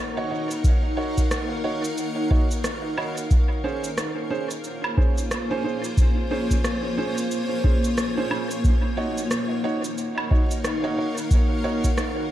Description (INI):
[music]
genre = ambient dub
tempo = 90 BPM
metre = 4/4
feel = swing 60% on 16ths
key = unclear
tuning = A4 = 440 Hz
[part]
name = granular cloud pad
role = sustained chords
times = 0.0-12.3 s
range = Bb3 to Gb5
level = -27 LUFS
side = left 1 dB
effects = built-in reverb
[part]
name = clear upright piano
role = stabs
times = 0.2-11.9 s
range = Db4 to Db5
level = -29 LUFS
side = right 3 dB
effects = dub echo
[part]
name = electronic cabasa, rim click and woodblock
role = drums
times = 0.5-12.1 s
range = none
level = -31 LUFS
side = equal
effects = dub echo
[part]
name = electronic kick drum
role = drums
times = 0.6-11.9 s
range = none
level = -21 LUFS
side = equal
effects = none
[sound]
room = moderate recital hall reverb, RT60 1.6 s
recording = vinyl crackle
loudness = -21 LUFS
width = side -13 dB against mid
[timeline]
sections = 0.0-12.3 A section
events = none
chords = 0.0 Ebm7; 3.3 Bbm9; 8.6 Ebm7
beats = | 0.64 1.31 1.97 2.64 | 3.31 3.97 4.64 5.31 | 5.97 6.64 7.31 7.97 | 8.64 9.31 9.97 10.64 | 11.31 11.97